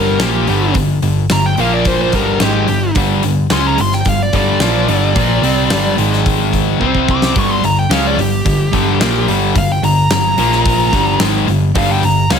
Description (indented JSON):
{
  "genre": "hard rock",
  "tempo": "109 BPM",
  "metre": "4/4",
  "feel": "straight",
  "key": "G minor",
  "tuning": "A4 = 438 Hz",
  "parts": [
    { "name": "bluesy overdriven lead guitar", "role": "melody", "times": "0.0-12.4 s", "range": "G4 to D6", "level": "-18 LUFS", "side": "equal", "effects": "distortion, plate reverb, digital delay" },
    { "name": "high-gain distorted guitar", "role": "riff", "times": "0.0-12.4 s", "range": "G2 to C#4", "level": "-17 LUFS", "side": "left 13 dB", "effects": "distortion" },
    { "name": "overdriven semi-hollow guitar", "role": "riff", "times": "0.0-12.4 s", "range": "G2 to C#4", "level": "-18 LUFS", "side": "right 11 dB", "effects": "none" },
    { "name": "hollow-body short-scale picked electric bass", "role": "bass", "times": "0.0-12.4 s", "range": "G1 to C#2", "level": "-19 LUFS", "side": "equal", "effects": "none" },
    { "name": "huge arena drum kit", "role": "drums", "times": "0.2-12.4 s", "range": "hi-hat, kick drum, snare drum", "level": "-19 LUFS", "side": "left 1 dB", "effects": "none" }
  ],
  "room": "light reverb",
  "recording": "none",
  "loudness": "-11 LUFS",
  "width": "side -7 dB against mid",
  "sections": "0.0-12.4 A section",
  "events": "lead electric guitar solo 0.0-12.4; drum fill 6.8-7.4",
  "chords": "0.0 Gm; 1.6 Bb5; 2.1 Gm; 6.0 Ab5; 6.8 C5; 7.4 Gm; 10.4 Bb5; 10.9 Gm",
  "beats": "0.20 | 0.75 1.30 1.85 2.40 | 2.96 3.51 4.06 4.61 | 5.16 5.71 6.26 6.81 | 7.36 7.91 8.46 9.01 | 9.56 10.11 10.66 11.21 | 11.76 12.31"
}